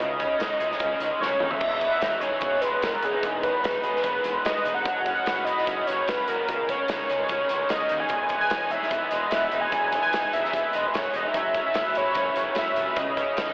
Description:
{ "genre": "indie rock", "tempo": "148 BPM", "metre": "4/4", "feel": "straight", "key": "E major", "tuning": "A4 = 440 Hz", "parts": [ { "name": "fat analog lead", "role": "melody", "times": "0.0-13.5 s", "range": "G#4 to G#5", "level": "-25 LUFS", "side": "equal", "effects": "analog delay" }, { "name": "raw garage guitar", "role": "riff", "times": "0.0-13.5 s", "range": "E2 to G#4", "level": "-27 LUFS", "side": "equal", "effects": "overdrive, analog chorus" }, { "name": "growling picked electric bass", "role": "bass", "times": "0.0-13.5 s", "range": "E1 to D#2", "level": "-38 LUFS", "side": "equal", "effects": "overdrive" }, { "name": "loose indie drum kit", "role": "drums", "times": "0.0-13.5 s", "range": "crash cymbal, hi-hat, kick drum, snare drum, toms", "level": "-32 LUFS", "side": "equal", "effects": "none" } ], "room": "wet huge ambient reverb, RT60 8.8 s", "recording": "dreamy mix soaked in reverb, telephone sound", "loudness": "-22 LUFS", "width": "side -25 dB against mid", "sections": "0.0-1.6 A section; 1.6-13.5 A section", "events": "drum fill 1.2-1.6", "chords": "0.0 C#sus2; 1.6 Emaj7; 4.9 F#7sus4; 6.5 C#sus2; 8.1 Emaj7; 11.3 F#7sus4; 13.0 C#sus2" }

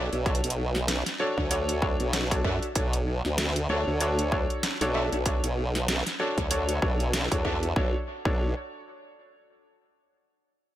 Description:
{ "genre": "glitch hop", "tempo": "96 BPM", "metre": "4/4", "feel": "swing 58% on 16ths", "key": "B minor", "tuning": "A4 = 440 Hz", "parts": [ { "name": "clear grand piano", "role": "stabs", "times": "0.0-8.5 s", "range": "D4 to E5", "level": "-31 LUFS", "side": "equal", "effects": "sidechain pumping, low-pass filter, tape echo" }, { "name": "formant-sweep wobble bass", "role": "bass", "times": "0.0-8.5 s", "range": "B1 to F#2", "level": "-28 LUFS", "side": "equal", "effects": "chorus, tube saturation" }, { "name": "dubstep drum kit", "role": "drums", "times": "0.1-7.7 s", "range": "hi-hat, snare drum", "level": "-31 LUFS", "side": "equal", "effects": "overdrive, tape echo" }, { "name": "electronic kick drum", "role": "drums", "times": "0.3-8.4 s", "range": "none", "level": "-29 LUFS", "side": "equal", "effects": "overdrive" } ], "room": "light reverb, digital ambience", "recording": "echo-heavy mix", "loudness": "-24 LUFS", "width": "side -13 dB against mid", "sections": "0.0-7.8 A section; 7.8-10.3 B section", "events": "none", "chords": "0.0 Bm7" }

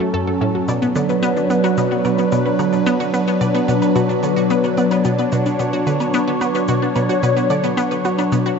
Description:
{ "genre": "ambient, sequencer-driven space music", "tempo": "110 BPM", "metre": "4/4", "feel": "straight", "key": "B minor", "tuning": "A4 = 440 Hz", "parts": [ { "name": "phased analog pad", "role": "sustained chords", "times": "0.0-8.6 s", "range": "F#3 to C#5", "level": "-18 LUFS", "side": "equal", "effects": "phaser, chorus" }, { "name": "wide unison pluck", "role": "arpeggios", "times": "0.0-8.6 s", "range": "A3 to D5", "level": "-24 LUFS", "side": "moving between left 2 dB and right 5 dB", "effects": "auto-pan, vintage 12-bit sampler grit, ping-pong delay" }, { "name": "resonant blip pluck", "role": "riff", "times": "0.1-8.5 s", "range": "F#2 to B3", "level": "-21 LUFS", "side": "left 1 dB", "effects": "chorus, ping-pong delay" }, { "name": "shaker and woodblock", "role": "percussion", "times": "0.7-8.6 s", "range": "none", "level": "-36 LUFS", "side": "left 4 dB", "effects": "ping-pong delay" } ], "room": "wet huge ambient reverb, RT60 8.6 s", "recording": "cassette tape, nothing above 7.7 kHz", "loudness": "-15 LUFS", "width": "side -6 dB against mid", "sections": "0.0-8.6 A section", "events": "none", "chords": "0.0 F#m; 0.7 Bm" }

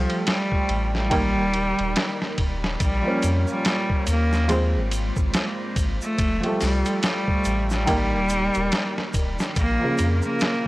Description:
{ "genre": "trip hop", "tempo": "71 BPM", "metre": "4/4", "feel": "swing 59% on 16ths", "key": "Bb dorian", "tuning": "A4 = 440 Hz", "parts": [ { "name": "clear cello", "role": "melody", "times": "0.0-10.7 s", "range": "F3 to Bb3", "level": "-25 LUFS", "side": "equal", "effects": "dub echo" }, { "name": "felt-muted upright piano", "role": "accompaniment", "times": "0.0-10.7 s", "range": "Db3 to Db4", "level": "-27 LUFS", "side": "right 1 dB", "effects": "tremolo" }, { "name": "string machine, cellos", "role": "sustained chords", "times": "0.0-10.7 s", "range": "G3 to Db5", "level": "-34 LUFS", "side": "equal", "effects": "phaser, ensemble chorus" }, { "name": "soft dub sub bass", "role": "bass", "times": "0.0-10.2 s", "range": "Eb1 to F2", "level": "-24 LUFS", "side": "equal", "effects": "tube saturation" }, { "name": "boom bap sampler-style drum kit", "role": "drums", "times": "0.1-10.7 s", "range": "hi-hat, kick drum, ride cymbal, snare drum", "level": "-26 LUFS", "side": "equal", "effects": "studio reverb" }, { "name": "tube shaker", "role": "percussion", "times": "2.8-10.6 s", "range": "none", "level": "-38 LUFS", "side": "right 1 dB", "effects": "none" } ], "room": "small room ambience", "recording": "dry, gritty hardware recording, cassette tape", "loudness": "-20 LUFS", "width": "side -19 dB against mid", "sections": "0.0-10.7 A section", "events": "none", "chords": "0.0 Fadd9; 1.1 Eb; 2.8 Bbm; 4.5 Ab6; 6.2 Fadd9; 7.9 Eb; 9.6 Bbm" }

